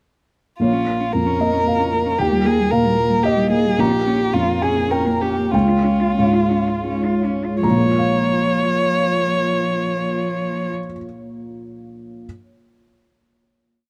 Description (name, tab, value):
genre	neoclassical piano and strings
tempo	78-115 BPM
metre	3/4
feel	rubato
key	Bb dorian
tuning	A4 = 440 Hz
part	warm violin	melody	0.6-10.7 s	F4 to Db5	-23 LUFS	equal	none
part	warm cello	second line	0.6-10.7 s	F3 to F4	-26 LUFS	equal	none
part	felt-muted upright piano	accompaniment	0.6-12.3 s	Bb1 to Bb5	-23 LUFS	equal	none
part	glassy FM pad	sustained chords	1.3-10.7 s	Ab3 to Db5	-30 LUFS	equal	none
room	light reverb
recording	dark, warm production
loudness	-18 LUFS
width	mono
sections	0.6-7.6 theme; 7.6-12.2 final chord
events	slowing down 3.0-7.6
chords	0.6 Bbm; 2.2 Eb; 3.8 Bbm; 5.5 Db; 7.6 Bbm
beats	| 0.60 1.15 1.67 | 2.20 2.72 3.24 | 3.79 4.34 4.92 | 5.53 6.18 6.87 | 7.63 8.40 9.16 | 9.93 10.69 11.46